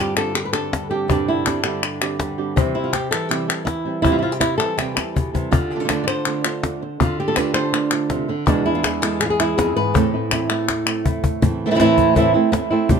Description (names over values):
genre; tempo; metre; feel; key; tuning
flamenco; 163 BPM; 4/4; straight; A minor; A4 = 440 Hz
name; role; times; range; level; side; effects
flamenco guitar; melody; 0.0-13.0 s; E2 to D5; -20 LUFS; right 1 dB; plate reverb, tape echo
flamenco guitar; stabs; 0.0-13.0 s; E2 to G4; -26 LUFS; right 7 dB; none
palmas hand claps; percussion; 0.2-11.1 s; none; -23 LUFS; left 5 dB; none
cajon; percussion; 0.5-13.0 s; none; -21 LUFS; left 3 dB; none
room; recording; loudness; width
moderate studio reverb, RT60 0.6 s; close, detailed microphones; -17 LUFS; side -6 dB against mid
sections
0.0-11.4 A section; 11.4-13.0 B section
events
drum fill 4.8-5.5, 10.7-11.4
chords
0.0 Gsus4; 2.6 C; 5.5 Dm; 8.5 E; 9.9 Am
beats
0.35 0.72 | 1.09 1.46 1.83 2.20 | 2.57 2.94 3.31 3.68 | 4.05 4.42 4.79 5.16 | 5.53 5.89 6.26 6.63 | 7.00 7.37 7.74 8.11 | 8.47 8.84 9.21 9.58 | 9.95 10.32 10.69 11.05 | 11.42 11.79 12.16 12.53 | 12.89